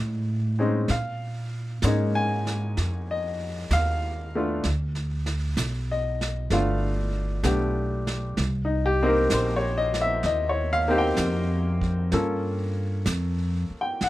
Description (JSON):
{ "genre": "jazz ballad", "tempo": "64 BPM", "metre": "4/4", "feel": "swing 69% on 8ths", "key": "unclear", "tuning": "A4 = 440 Hz", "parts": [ { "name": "warm upright piano", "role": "accompaniment", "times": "0.0-14.1 s", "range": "G#3 to Ab5", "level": "-26 LUFS", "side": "left 1 dB", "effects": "none" }, { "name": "upright bass", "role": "bass", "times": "0.0-14.1 s", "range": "G1 to Bb2", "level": "-26 LUFS", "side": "equal", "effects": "none" }, { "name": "vintage brush drum kit", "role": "drums", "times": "0.9-14.1 s", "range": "brushed snare drum, hi-hat, kick drum, snare drum", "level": "-34 LUFS", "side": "right 2 dB", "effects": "none" } ], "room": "little or no reverb", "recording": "close, detailed microphones", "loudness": "-23 LUFS", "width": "side -16 dB against mid", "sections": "0.0-14.1 A section", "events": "none", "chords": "0.0 F7alt; 0.9 Bbm7; 4.6 G7; 8.4 Cm7; 12.1 Gm7b5" }